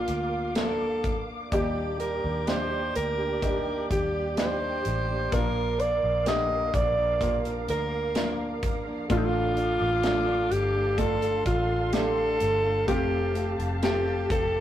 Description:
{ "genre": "pop ballad", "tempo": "63 BPM", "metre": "4/4", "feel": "straight", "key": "Bb major", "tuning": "A4 = 444 Hz", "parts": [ { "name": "breathy alto saxophone", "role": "melody", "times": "0.0-14.6 s", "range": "Eb4 to Eb5", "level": "-27 LUFS", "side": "right 1 dB", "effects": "none" }, { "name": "felt-muted upright piano", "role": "accompaniment", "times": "0.0-14.6 s", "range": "A2 to A4", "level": "-33 LUFS", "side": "left 2 dB", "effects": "none" }, { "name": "muted studio string section", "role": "sustained chords", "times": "0.0-14.6 s", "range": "Bb3 to D6", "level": "-36 LUFS", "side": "right 1 dB", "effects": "none" }, { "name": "vintage muted fingered electric bass", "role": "bass", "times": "0.0-14.6 s", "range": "F1 to Eb2", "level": "-32 LUFS", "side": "equal", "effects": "none" }, { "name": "modern studio drum kit", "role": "drums", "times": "0.1-14.5 s", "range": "hi-hat, kick drum, snare drum", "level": "-31 LUFS", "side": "equal", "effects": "none" }, { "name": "fingerpicked plugged-in steel-string acoustic guitar", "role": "arpeggios", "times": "1.5-14.6 s", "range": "A2 to Bb4", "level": "-36 LUFS", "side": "right 3 dB", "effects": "none" } ], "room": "moderate stone room reverb, RT60 1.0 s", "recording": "rough rehearsal-room recording, tube saturation", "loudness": "-24 LUFS", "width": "side -11 dB against mid", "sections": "0.0-14.6 A section", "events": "none", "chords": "0.0 Bb; 1.5 Ebmaj7; 5.3 Bb; 9.1 Dm; 12.9 Fadd9" }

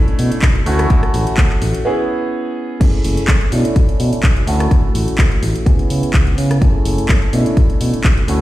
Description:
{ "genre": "filtered disco house", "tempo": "126 BPM", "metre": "4/4", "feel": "swing 54% on 16ths", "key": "F# minor", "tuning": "A4 = 440 Hz", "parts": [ { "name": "clear concert grand piano", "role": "accompaniment", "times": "0.0-8.4 s", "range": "A3 to G#4", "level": "-20 LUFS", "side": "right 1 dB", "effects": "phaser, sidechain pumping, low-pass filter" }, { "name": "fingered electric bass", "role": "bass", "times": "0.0-8.4 s", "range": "F#1 to C#3", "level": "-18 LUFS", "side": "equal", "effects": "sidechain pumping, low-pass filter" }, { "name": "house drum kit", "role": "drums", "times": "0.1-8.4 s", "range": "crash cymbal, handclaps, hi-hat, rim click", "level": "-23 LUFS", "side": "left 1 dB", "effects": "sidechain pumping on hats, small room reverb, sidechain pumping on cymbals" }, { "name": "electronic kick drum", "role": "drums", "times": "0.4-8.1 s", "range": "none", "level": "-13 LUFS", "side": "equal", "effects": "small room reverb" } ], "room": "digital ambience", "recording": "played on a big sound system in a bare room, stone room reverb", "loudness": "-12 LUFS", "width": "side -15 dB against mid", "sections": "0.0-2.8 A section; 2.8-8.4 A section", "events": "break 1.9-2.8; filter sweep 2.8-8.4", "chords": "0.0 Bm11; 0.7 Dmaj9; 1.9 C#m7; 2.8 F#m9; 3.5 Bm11; 4.5 Dmaj9; 5.7 C#m7; 6.6 F#m9; 7.3 Bm11" }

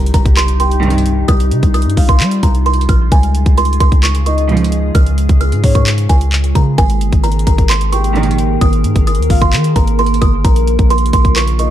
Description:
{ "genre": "hip hop, trap", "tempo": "131 BPM", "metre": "4/4", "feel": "half-time", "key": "C phrygian", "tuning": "A4 = 439 Hz", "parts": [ { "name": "buzzing kalimba", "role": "melody", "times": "0.0-11.7 s", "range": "Ab5 to F6", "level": "-19 LUFS", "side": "right 4 dB", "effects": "tape echo" }, { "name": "glassy FM pad", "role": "sustained chords", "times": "0.0-11.7 s", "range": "C3 to Bb4", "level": "-20 LUFS", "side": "equal", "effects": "ensemble chorus, built-in reverb" }, { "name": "long sustained 808-style bass", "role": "bass", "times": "0.0-11.7 s", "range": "G1 to G3", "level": "-14 LUFS", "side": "equal", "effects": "none" }, { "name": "impact", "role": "sound effects", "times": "0.0-1.3 s", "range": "none", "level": "-28 LUFS", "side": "equal", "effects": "none" }, { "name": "trap drum kit", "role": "drums", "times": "0.1-11.7 s", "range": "handclaps, hi-hat, kick drum", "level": "-13 LUFS", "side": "equal", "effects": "none" }, { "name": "soft octave-layered synth lead", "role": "second line", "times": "0.6-11.7 s", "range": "Db5 to G5", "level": "-23 LUFS", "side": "left 4 dB", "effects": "chorus, tape echo" }, { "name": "rich studio string section", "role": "stabs", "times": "0.8-1.3, 4.5-4.9, 8.2-8.6 s", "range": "Bb1 to F3", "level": "-18 LUFS", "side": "right 5 dB", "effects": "none" } ], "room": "digital ambience", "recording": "dark, warm production", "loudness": "-10 LUFS", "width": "side -12 dB against mid", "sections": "0.0-11.7 A section", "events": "impact 0.0-1.3", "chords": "0.0 Cm; 3.1 Db; 6.8 Absus2; 10.4 Bbm" }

